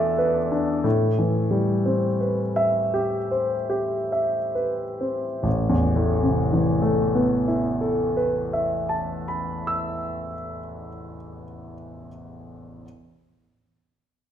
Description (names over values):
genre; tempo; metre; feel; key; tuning
classical, impressionist solo piano; 22-33 BPM (dotted quarters); 6/8; rubato; A minor; A4 = 440 Hz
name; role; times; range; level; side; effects
warm grand piano; solo; 0.0-12.9 s; A1 to E6; -22 LUFS; equal; none
room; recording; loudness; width
wet recital hall reverb, RT60 1.5 s; minimal, uncompressed stereo recording; -21 LUFS; side -9 dB against mid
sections
0.0-5.4 A section; 5.4-10.6 B section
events
slowing down 0.0-5.4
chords
0.0 E7sus4; 0.8 Am9; 5.4 Amadd9